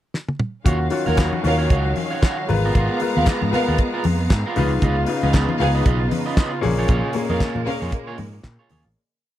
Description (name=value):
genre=disco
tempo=116 BPM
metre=4/4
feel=swing 56% on 16ths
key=unclear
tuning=A4 = 440 Hz
part: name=damped 70s drum kit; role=drums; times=0.1-8.8 s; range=hi-hat, kick drum, snare drum, toms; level=-20 LUFS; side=equal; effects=none
part: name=warm grand piano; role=accompaniment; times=0.6-9.0 s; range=A#2 to B4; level=-25 LUFS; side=left 5 dB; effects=none
part: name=electric guitar at the edge of break-up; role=accompaniment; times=0.7-8.9 s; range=B3 to E#5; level=-28 LUFS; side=right 4 dB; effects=none
part: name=clear studio string section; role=sustained chords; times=0.7-8.9 s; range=C#3 to A#5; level=-28 LUFS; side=right 2 dB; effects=none
part: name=fingered electric bass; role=bass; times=0.7-8.9 s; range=G#1 to A#2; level=-22 LUFS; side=right 1 dB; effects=tube saturation
part: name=congas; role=percussion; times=0.7-8.8 s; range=none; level=-29 LUFS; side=left 5 dB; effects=none
part: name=dark studio violin section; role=second line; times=1.1-7.9 s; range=B3 to E#5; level=-24 LUFS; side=equal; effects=none
part: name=group handclap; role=percussion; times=1.2-8.6 s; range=none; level=-34 LUFS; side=left 3 dB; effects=none
room=little or no reverb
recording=dry, close 1970s-style studio recording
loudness=-18 LUFS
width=side -12 dB against mid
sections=0.0-0.7 pickup bar; 0.7-9.0 pre-chorus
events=drum fill 0.1-0.7; fade-out 6.9-9.0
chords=0.0 N.C.; 0.7 D#m9; 2.5 G#m69; 4.6 C#9; 6.6 A#m7